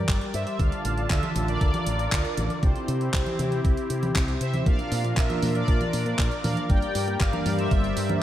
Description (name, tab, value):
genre	italo disco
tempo	118 BPM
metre	4/4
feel	straight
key	D minor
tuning	A4 = 440 Hz
part	warm analog pad	sustained chords	0.0-8.2 s	D3 to A5	-31 LUFS	left 1 dB	chorus
part	fingered electric bass with an envelope filter	bass	0.0-8.2 s	G1 to C3	-28 LUFS	equal	tube saturation
part	electronic kick drum	drums	0.1-7.8 s	none	-24 LUFS	equal	none
part	house drum kit	drums	0.1-8.2 s	congas, handclaps, hi-hat	-30 LUFS	equal	none
part	mellow synth brass	melody	0.3-8.2 s	G4 to G5	-31 LUFS	equal	chorus, phaser, diffuse ambient delay
part	tine electric piano	stabs	4.7-8.2 s	G2 to Bb4	-32 LUFS	right 2 dB	none
room	moderate lush hall reverb, RT60 1.9 s, digital ambience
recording	dreamy mix soaked in reverb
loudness	-22 LUFS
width	side -12 dB against mid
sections	0.0-8.2 A section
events	none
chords	0.0 Gm; 0.6 Dm; 2.6 C; 4.7 Bb; 6.7 Gm